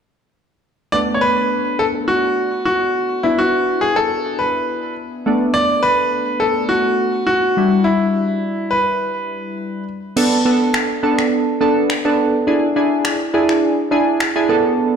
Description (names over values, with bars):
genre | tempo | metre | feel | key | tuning
dance-pop | 104 BPM | 4/4 | straight | B minor | A4 = 440 Hz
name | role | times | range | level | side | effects
bright baby grand piano | melody | 0.9-9.8 s | E4 to D5 | -17 LUFS | equal | digital delay
glassy digital keys | accompaniment | 0.9-15.0 s | G3 to A4 | -18 LUFS | equal | chorus
pop drum kit | drums | 10.2-14.3 s | crash cymbal, finger snaps | -22 LUFS | left 2 dB | overdrive
room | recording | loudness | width
light reverb | played on a big sound system in a bare room, large studio reverb | -15 LUFS | side -7 dB against mid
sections
0.9-10.2 A section; 10.2-15.0 B section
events
none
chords
0.9 Bm7; 3.2 E5; 5.3 Bm7; 7.6 Em7; 10.2 Bm7; 12.5 E7